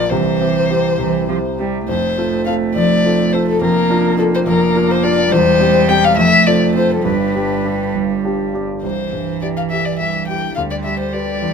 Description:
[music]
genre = quick classical-period movement for piano trio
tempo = 69 BPM (dotted quarters)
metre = 6/8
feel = rubato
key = C major from 5.3 s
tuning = A4 = 440 Hz
[part]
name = dark violin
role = melody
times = 0.0-11.5 s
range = A4 to G5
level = -17 LUFS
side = left 5 dB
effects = none
[part]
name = rich cello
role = second line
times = 0.0-11.5 s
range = E3 to Bb3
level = -20 LUFS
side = right 9 dB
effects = none
[part]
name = warm grand piano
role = accompaniment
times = 0.0-11.5 s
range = E1 to B4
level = -17 LUFS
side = equal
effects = none
[sound]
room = moderate studio reverb, RT60 0.8 s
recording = none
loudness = -13 LUFS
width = side -6 dB against mid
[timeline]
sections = 0.0-8.8 A section; 8.8-11.5 B section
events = none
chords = 0.1 C; 1.9 F; 3.6 Bb/F; 5.3 C/E; 6.2 F; 7.0 G; 8.8 C; 10.6 G/D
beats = | 0.11 0.99 | 1.89 2.75 | 3.61 4.47 | 5.31 6.17 | 7.05 7.94 | 8.84 9.71 | 10.57 11.43

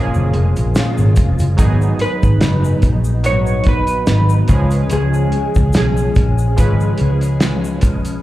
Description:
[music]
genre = indie pop, bedroom pop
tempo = 72 BPM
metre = 4/4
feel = swing 55% on 16ths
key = unclear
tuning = A4 = 439 Hz
[part]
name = mellow electric guitar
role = accompaniment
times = 0.0-8.2 s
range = G#2 to E#4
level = -21 LUFS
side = left 2 dB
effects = ensemble chorus, warbly pitch drift, slapback echo
[part]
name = warm analog keys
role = accompaniment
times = 0.0-8.2 s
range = E#3 to B4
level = -24 LUFS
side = right 5 dB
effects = chorus, cassette tape, slapback echo
[part]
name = tube shaker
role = percussion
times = 0.1-8.2 s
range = none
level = -39 LUFS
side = left 3 dB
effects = none
[part]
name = vintage muted picked electric bass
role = bass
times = 0.2-8.2 s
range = E#1 to C#2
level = -15 LUFS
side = equal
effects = none
[part]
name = cloth-damped thuddy drum kit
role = drums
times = 0.3-8.2 s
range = hi-hat, kick drum, snare drum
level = -16 LUFS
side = equal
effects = none
[part]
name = electric slide guitar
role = melody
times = 2.0-7.8 s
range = G#4 to C#5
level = -22 LUFS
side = equal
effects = analog chorus, slapback echo
[sound]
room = little or no reverb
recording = live gig heard through the venue's PA, club reverb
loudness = -12 LUFS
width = side -15 dB against mid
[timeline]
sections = 0.0-8.2 A section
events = none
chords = 0.0 A#m7; 1.6 G#m7; 4.5 C#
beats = 0.76 | 1.59 2.42 3.25 4.09 | 4.92 5.75 6.58 7.42

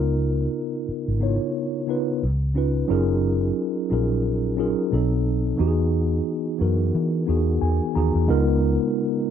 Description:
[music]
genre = R&B, neo-soul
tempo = 89 BPM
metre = 4/4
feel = swing 58% on 16ths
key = unclear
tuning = A4 = 438 Hz
[part]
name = mellow tine electric piano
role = accompaniment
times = 0.0-9.3 s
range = B2 to A#5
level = -23 LUFS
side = equal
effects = medium stereo tremolo
[part]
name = vintage muted fingered electric bass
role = bass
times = 0.0-8.8 s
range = F#1 to E3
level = -23 LUFS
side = equal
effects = none
[sound]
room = little or no reverb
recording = dry, close 1970s-style studio recording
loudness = -20 LUFS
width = side -8 dB against mid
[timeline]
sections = 0.0-8.3 A section; 8.3-9.3 B section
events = tine electric piano fill 7.3-8.3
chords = 0.0 C#13; 2.2 C#7; 2.9 F#maj13; 4.9 B7b9; 5.6 Emaj9; 8.3 C#13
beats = | 0.19 0.87 1.54 2.21 | 2.89 3.56 4.24 4.91 | 5.59 6.26 6.93 7.61 | 8.28 8.96

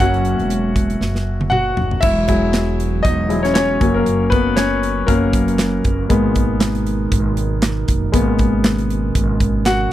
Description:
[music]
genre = piano-driven pop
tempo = 118 BPM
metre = 4/4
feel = swing 56% on 16ths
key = unclear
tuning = A4 = 440 Hz
[part]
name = bright concert grand piano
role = accompaniment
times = 0.0-9.9 s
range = F#3 to F#5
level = -19 LUFS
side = left 3 dB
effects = none
[part]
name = upright bass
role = bass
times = 0.0-9.9 s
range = E1 to G#1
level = -20 LUFS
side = right 1 dB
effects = none
[part]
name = modern studio drum kit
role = drums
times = 0.0-9.8 s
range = crash cymbal, handclaps, hi-hat, kick drum, snare drum, toms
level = -19 LUFS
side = right 1 dB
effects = none
[part]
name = pipe organ, stopped flute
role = sustained chords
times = 2.0-9.9 s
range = B2 to A#4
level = -25 LUFS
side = right 5 dB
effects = none
[sound]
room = small room ambience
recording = dry, close 1970s-style studio recording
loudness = -15 LUFS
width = side -13 dB against mid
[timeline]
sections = 0.0-2.0 A section; 2.0-9.9 B section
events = grand piano solo 0.0-2.0, 2.0-9.9; drum fill 1.0-2.0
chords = 0.0 F#; 2.0 Eadd9; 3.8 F#; 6.1 G#madd9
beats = | 0.00 0.51 1.01 1.52 | 2.03 2.54 3.05 3.56 | 4.07 4.58 5.08 5.59 | 6.10 6.61 7.12 7.63 | 8.14 8.64 9.15 9.66

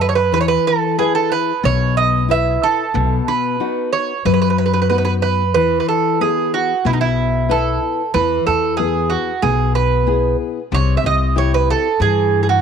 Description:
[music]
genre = greek folk, Greek bouzouki band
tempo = 92 BPM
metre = 4/4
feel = straight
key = E major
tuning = A4 = 440 Hz
[part]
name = Greek bouzouki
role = melody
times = 0.0-12.6 s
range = D#4 to E5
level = -17 LUFS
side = right 8 dB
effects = none
[part]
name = nylon-string guitar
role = accompaniment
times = 0.0-12.6 s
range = B2 to D#5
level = -21 LUFS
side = left 13 dB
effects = none
[part]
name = upright bass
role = bass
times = 0.0-12.6 s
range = B1 to G2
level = -19 LUFS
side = left 1 dB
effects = none
[sound]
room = light reverb, small room reverb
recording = 1960s-style stereo with parts hard left and right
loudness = -14 LUFS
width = side -7 dB against mid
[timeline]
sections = 0.0-8.1 A section; 8.1-12.6 B section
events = speeding up 0.0-12.6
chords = 0.3 E; 3.0 B; 5.6 E; 10.7 C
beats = | 0.33 0.99 1.64 2.30 | 2.95 3.60 4.26 4.91 | 5.56 6.21 6.85 7.50 | 8.15 8.79 9.44 10.08 | 10.72 11.36 12.00

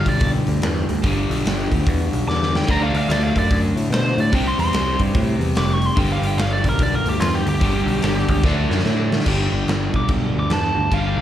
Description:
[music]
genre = blues rock power trio and southern rock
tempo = 146 BPM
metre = 4/4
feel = swing 64% on 8ths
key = G mixolydian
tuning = A4 = 439 Hz
[part]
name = biting lead guitar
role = melody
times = 0.0-11.2 s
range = F4 to D6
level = -24 LUFS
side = equal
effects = overdrive, slapback echo
[part]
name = crunchy overdriven guitar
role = riff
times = 0.0-11.2 s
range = G2 to D4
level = -22 LUFS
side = equal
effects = none
[part]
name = overdriven picked electric bass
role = bass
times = 0.1-11.2 s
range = F1 to B2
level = -22 LUFS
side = equal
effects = none
[part]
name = big rock drum kit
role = drums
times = 0.1-11.0 s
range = crash cymbal, hi-hat, kick drum, snare drum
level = -23 LUFS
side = equal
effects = none
[sound]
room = light reverb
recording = live gig heard through the venue's PA, club reverb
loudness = -17 LUFS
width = side -11 dB against mid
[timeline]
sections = 0.0-9.3 A section; 9.3-11.2 A section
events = lead electric guitar solo 0.0-11.2; drum fill 2.3-2.7, 8.4-9.3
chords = 0.0 G; 2.7 D; 4.3 C; 6.0 G; 8.4 D; 9.3 G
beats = 0.21 0.62 | 1.03 1.45 1.86 2.27 | 2.68 3.09 3.50 3.92 | 4.33 4.74 5.15 5.56 | 5.97 6.38 6.79 7.20 | 7.61 8.03 8.44 8.85 | 9.26 9.67 10.08 10.49 | 10.90

